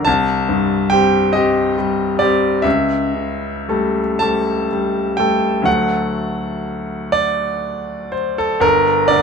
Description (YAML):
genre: classical, romantic nocturne for solo piano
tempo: 36-48 BPM (dotted quarters)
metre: 6/8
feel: rubato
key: unclear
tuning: A4 = 440 Hz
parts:
  - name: bright grand piano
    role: solo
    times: 0.0-9.2 s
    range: G1 to A5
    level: -15 LUFS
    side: equal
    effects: none
room: light reverb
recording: close, detailed microphones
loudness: -15 LUFS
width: side -6 dB against mid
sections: 0.0-8.6 A section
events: none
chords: 0.1 Cm; 2.6 A7/C#; 5.7 D; 8.6 Gm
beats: | 0.07 1.35 | 2.65 4.21 | 5.66 7.14 | 8.63